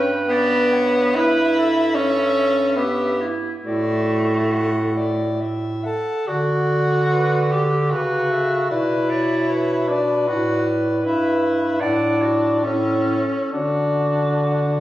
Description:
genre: classical, lyrical piece for single-reed quartet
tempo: 64-81 BPM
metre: 3/4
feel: rubato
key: D major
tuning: A4 = 440 Hz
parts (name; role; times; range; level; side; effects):
- warm soprano saxophone; melody; 0.0-14.8 s; B4 to G5; -30 LUFS; left 4 dB; none
- clear clarinet; second line; 0.0-14.8 s; E4 to D5; -26 LUFS; right 3 dB; none
- mellow tenor saxophone; accompaniment; 0.0-14.8 s; A3 to A4; -20 LUFS; equal; none
- mellow bass clarinet; bass; 0.0-14.8 s; G2 to D3; -22 LUFS; right 1 dB; none
room: moderate scoring stage reverb, RT60 1.6 s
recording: recorded on a phone in the room, club reverb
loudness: -17 LUFS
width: side -14 dB against mid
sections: 0.0-14.8 A section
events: none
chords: 0.0 G; 1.2 Em/G; 3.6 D/A; 6.3 D; 8.7 Bm; 11.0 Em/G; 11.8 D/A; 12.6 A; 13.5 D

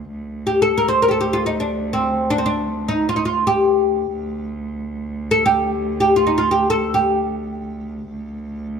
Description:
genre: Arabic maqam ensemble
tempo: free time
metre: none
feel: none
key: D maqam kurd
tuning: A4 = 441 Hz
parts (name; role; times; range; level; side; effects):
- rich cello; drone; 0.0-8.8 s; D2; -26 LUFS; right 2 dB; none
- oud; melody; 0.5-8.7 s; C4 to C5; -17 LUFS; equal; none
room: moderate concert hall reverb, RT60 2.0 s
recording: close, detailed microphones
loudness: -17 LUFS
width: side -6 dB against mid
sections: 0.1-8.8 A section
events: none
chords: none

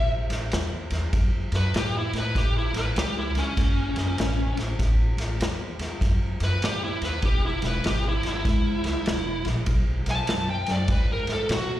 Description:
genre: electric blues shuffle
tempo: 98 BPM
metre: 4/4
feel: swing 64% on 8ths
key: unclear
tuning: A4 = 440 Hz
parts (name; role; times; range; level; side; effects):
- smooth overdriven lead guitar; melody; 0.0-11.8 s; C#4 to A5; -28 LUFS; equal; slapback echo
- upright bass; bass; 0.0-11.8 s; E1 to B2; -27 LUFS; equal; none
- vintage drum kit; drums; 0.3-11.7 s; kick drum, ride cymbal, snare drum; -26 LUFS; equal; none
room: small room ambience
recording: live gig heard through the venue's PA, recital hall reverb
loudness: -22 LUFS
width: side -13 dB against mid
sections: 0.0-11.8 A section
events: none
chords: 0.0 A5; 7.2 E; 9.7 B5

